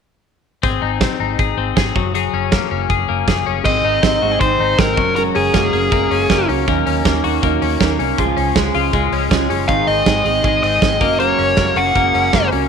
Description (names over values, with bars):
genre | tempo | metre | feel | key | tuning
jangly indie pop | 159 BPM | 4/4 | straight | unclear | A4 = 437 Hz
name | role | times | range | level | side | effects
twelve-string electric guitar | arpeggios | 0.6-12.7 s | Eb3 to Ab4 | -19 LUFS | left 13 dB | spring reverb
vintage muted fingered electric bass | bass | 0.6-12.7 s | Gb1 to Eb2 | -23 LUFS | equal | none
big rock drum kit | drums | 0.6-12.6 s | crash cymbal, hi-hat, kick drum, snare drum | -20 LUFS | right 3 dB | none
dark smooth lead guitar | melody | 3.6-6.5, 9.7-12.5 s | Ab4 to Gb5 | -16 LUFS | left 1 dB | overdrive, slapback echo
fingerpicked plugged-in steel-string acoustic guitar | accompaniment | 3.7-12.7 s | Ab2 to Bb4 | -21 LUFS | right 13 dB | none
room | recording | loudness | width
light reverb, small room ambience | 1960s-style stereo with parts hard left and right | -14 LUFS | side -6 dB against mid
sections
0.6-3.7 A section; 3.7-12.7 B section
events
none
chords
0.6 Ab; 2.0 Gbadd9; 3.7 Ab; 5.0 Gbadd9; 6.7 Ebm7; 8.2 Db; 9.7 Ab; 11.0 Gbadd9